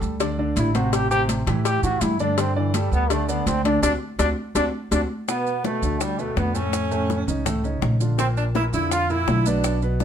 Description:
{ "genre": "Afro-Cuban jazz", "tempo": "165 BPM", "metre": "4/4", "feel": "straight", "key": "unclear", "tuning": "A4 = 440 Hz", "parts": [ { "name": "warm grand piano", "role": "accompaniment", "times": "0.0-10.0 s", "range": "A2 to D5", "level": "-27 LUFS", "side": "equal", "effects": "none" }, { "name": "upright bass", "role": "bass", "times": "0.0-10.0 s", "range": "A1 to A2", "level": "-24 LUFS", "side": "equal", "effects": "none" }, { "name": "congas", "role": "percussion", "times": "0.0-10.0 s", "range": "none", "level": "-30 LUFS", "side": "equal", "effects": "none" }, { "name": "maracas", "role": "percussion", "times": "0.0-10.0 s", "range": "none", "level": "-34 LUFS", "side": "right 8 dB", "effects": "none" }, { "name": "cowbell and bongos", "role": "percussion", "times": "0.2-10.0 s", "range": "none", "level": "-29 LUFS", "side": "left 10 dB", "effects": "none" }, { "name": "bright trombone", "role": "melody", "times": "0.6-10.0 s", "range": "E3 to G4", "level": "-25 LUFS", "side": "left 1 dB", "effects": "none" }, { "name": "breathy tenor saxophone", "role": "second line", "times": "5.3-10.0 s", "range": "G3 to F4", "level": "-30 LUFS", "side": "right 8 dB", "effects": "none" } ], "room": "moderate studio reverb, RT60 0.7 s", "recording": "none", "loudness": "-20 LUFS", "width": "side -8 dB against mid", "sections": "0.0-5.3 A section; 5.3-10.0 B section", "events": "trombone solo 0.0-5.3; band accent 3.8-5.3", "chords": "0.0 Gsus2; 0.9 Am7; 2.4 Gsus2; 3.8 D7; 5.3 D6; 6.7 Faug7; 8.2 Bb", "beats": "0.20 0.56 | 0.92 1.29 1.65 2.01 | 2.38 2.74 3.10 3.46 | 3.83 4.19 4.55 4.91 | 5.28 5.64 6.00 6.37 | 6.73 7.09 7.46 7.82 | 8.19 8.55 8.91 9.28 | 9.64 10.00" }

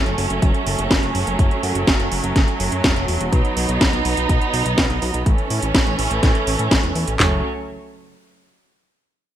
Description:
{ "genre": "italo disco", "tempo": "124 BPM", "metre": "4/4", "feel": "straight", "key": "F# dorian", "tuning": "A4 = 438 Hz", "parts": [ { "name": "warm studio string section", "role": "sustained chords", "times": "0.0-7.4 s", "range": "E3 to D#4", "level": "-22 LUFS", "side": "right 3 dB", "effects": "vintage 12-bit sampler grit" }, { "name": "fat analog bass", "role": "bass", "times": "0.0-7.4 s", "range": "E1 to A2", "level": "-24 LUFS", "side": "equal", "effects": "none" }, { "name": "house drum kit", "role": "drums", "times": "0.1-7.2 s", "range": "hi-hat, snare drum", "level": "-21 LUFS", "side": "equal", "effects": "none" }, { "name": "house drum kit", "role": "drums", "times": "0.4-7.3 s", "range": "handclaps, kick drum, snare drum, toms", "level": "-18 LUFS", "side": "equal", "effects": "none" } ], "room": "light reverb", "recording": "bright 1980s-style digital production", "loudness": "-16 LUFS", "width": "side -11 dB against mid", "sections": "0.0-7.2 A section; 7.2-9.1 B section", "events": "none", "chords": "0.0 F#m; 3.3 B; 5.3 A; 7.2 F#m", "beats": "0.42 0.91 | 1.39 1.87 2.36 2.84 | 3.33 3.81 4.29 4.78 | 5.26 5.75 6.23 6.71 | 7.20" }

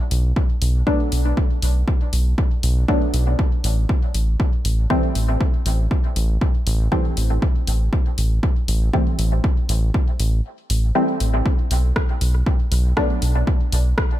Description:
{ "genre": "dub techno", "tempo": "119 BPM", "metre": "4/4", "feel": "swing 55% on 16ths", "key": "unclear", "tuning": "A4 = 440 Hz", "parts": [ { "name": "filtered dub chord stab", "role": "stabs", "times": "0.0-14.2 s", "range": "E3 to D4", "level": "-25 LUFS", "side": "left 1 dB", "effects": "chorus, phaser, sidechain pumping, dub echo" }, { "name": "round analog bass", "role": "bass", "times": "0.1-13.9 s", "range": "A1 to B1", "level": "-18 LUFS", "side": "equal", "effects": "sidechain pumping" }, { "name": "deep house drum kit", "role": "drums", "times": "0.1-14.1 s", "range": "hi-hat, rim click", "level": "-28 LUFS", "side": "left 2 dB", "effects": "studio ambience" }, { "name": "electronic kick drum", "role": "drums", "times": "0.4-14.1 s", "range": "none", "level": "-20 LUFS", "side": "equal", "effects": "studio ambience" } ], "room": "little or no reverb", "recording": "none", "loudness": "-17 LUFS", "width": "side -14 dB against mid", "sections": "0.0-14.2 A section", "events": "kick drops out 10.4-11.5", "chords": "0.0 Bm7; 3.4 Am7; 11.5 Bm7", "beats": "0.36 0.87 | 1.37 1.88 2.38 2.88 | 3.39 3.89 4.40 4.90 | 5.41 5.91 6.41 6.92 | 7.42 7.93 8.43 8.94 | 9.44 9.94 10.45 10.95 | 11.46 11.96 12.46 12.97 | 13.47 13.98" }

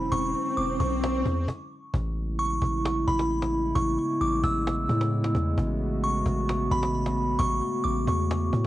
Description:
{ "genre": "hip hop, atmospheric cloud-rap", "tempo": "132 BPM", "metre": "4/4", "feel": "half-time", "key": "A major", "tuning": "A4 = 440 Hz", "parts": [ { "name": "glassy synth bell", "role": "melody", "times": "0.0-8.7 s", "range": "B5 to E6", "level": "-30 LUFS", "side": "right 1 dB", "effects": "chorus, cassette tape, tape echo" }, { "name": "dark analog pad", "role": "sustained chords", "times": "0.0-8.7 s", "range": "C#3 to F#4", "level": "-29 LUFS", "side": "equal", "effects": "lush chorus, cassette tape" }, { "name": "long sustained 808-style bass", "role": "bass", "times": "0.0-8.7 s", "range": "E1 to A2", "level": "-28 LUFS", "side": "equal", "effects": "tube saturation" }, { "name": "swell", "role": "sound effects", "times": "0.0-1.5 s", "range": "none", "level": "-30 LUFS", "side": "left 1 dB", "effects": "none" }, { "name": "cajon", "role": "drums", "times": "0.1-8.7 s", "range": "none", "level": "-31 LUFS", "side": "equal", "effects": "cassette tape" } ], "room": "little or no reverb", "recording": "home recording on cassette", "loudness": "-24 LUFS", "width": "side -14 dB against mid", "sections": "0.0-1.9 A section; 1.9-8.7 B section", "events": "swell 0.0-1.9; stop 1.5-1.9", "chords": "0.0 E13; 1.9 Amaj9", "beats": "| 0.12 0.57 1.03 1.48 | 1.94 2.39 2.85 3.30 | 3.76 4.21 4.67 5.12 | 5.57 6.03 6.48 6.94 | 7.39 7.85 8.30" }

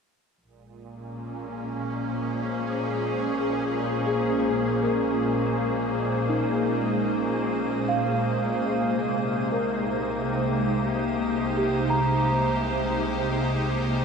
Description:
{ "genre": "ambient", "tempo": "59 BPM", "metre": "4/4", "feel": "straight", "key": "unclear", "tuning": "A4 = 440 Hz", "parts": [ { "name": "evolving wavetable pad", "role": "sustained chords", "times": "1.0-14.0 s", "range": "Bb2 to C5", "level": "-25 LUFS", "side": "left 1 dB", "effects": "ensemble chorus, built-in reverb" }, { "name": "clear studio double bass section", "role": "bass", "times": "0.4-14.0 s", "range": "Bb1 to C2", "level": "-40 LUFS", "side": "equal", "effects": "none" }, { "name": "organ-like drone", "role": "drone", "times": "0.8-14.0 s", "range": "Ab3", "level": "-33 LUFS", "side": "right 2 dB", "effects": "ensemble chorus, built-in reverb" }, { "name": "drifting glass-harmonics texture", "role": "texture", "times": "1.3-14.0 s", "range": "Eb6", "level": "-44 LUFS", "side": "right 2 dB", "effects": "chorus, built-in reverb" }, { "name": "worn celesta", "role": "arpeggios", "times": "4.1-14.0 s", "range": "Eb4 to Bb5", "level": "-30 LUFS", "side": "right 1 dB", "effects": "diffuse ambient delay" } ], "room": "wet huge ambient reverb, RT60 8.4 s", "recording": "none", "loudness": "-23 LUFS", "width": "side -5 dB against mid", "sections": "0.4-14.0 A section", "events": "fade-in on double bass section 0.4-14.0; fade-in on synth texture 0.4-14.0", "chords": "0.4 Bbm7; 8.6 Cm7", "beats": "| 0.41 1.45 2.48 3.50 | 4.52 5.54 6.55 7.57 | 8.58 9.60 10.62 11.65 | 12.68 13.71" }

